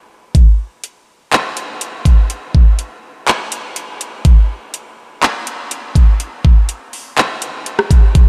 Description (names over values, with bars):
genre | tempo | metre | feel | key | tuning
hip hop | 123 BPM | 4/4 | half-time | none | none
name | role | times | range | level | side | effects
trap drum kit | drums | 0.3-8.3 s | handclaps, hi-hat, kick drum, rim click | -14 LUFS | equal | none
room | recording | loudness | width
light reverb | none | -15 LUFS | mono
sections
0.3-8.3 A section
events
break 0.0-0.3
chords
none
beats
| 0.35 0.83 1.32 1.81 | 2.30 2.79 3.27 3.76 | 4.25 4.74 5.22 5.71 | 6.20 6.69 7.18 7.66 | 8.15